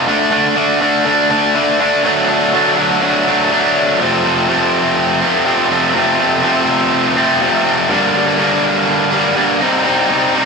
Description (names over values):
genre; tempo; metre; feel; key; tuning
rock; 123 BPM; 4/4; straight; unclear; A4 = 439 Hz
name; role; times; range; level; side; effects
distorted electric guitar; solo; 0.0-10.5 s; F2 to Eb4; -11 LUFS; equal; overdrive
room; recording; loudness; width
wet stone room reverb, RT60 1.4 s; band playing live in one room; -11 LUFS; side -4 dB against mid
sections
0.0-2.0 A section; 2.0-4.0 B section; 4.0-10.5 C section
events
none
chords
0.1 D5; 2.0 D; 4.0 F; 7.9 Gm; 9.6 Cm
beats
| 0.08 0.57 1.06 1.55 | 2.04 2.53 3.02 3.50 | 3.99 4.48 4.97 5.46 | 5.94 6.43 6.92 7.41 | 7.89 8.38 8.87 9.36 | 9.85 10.34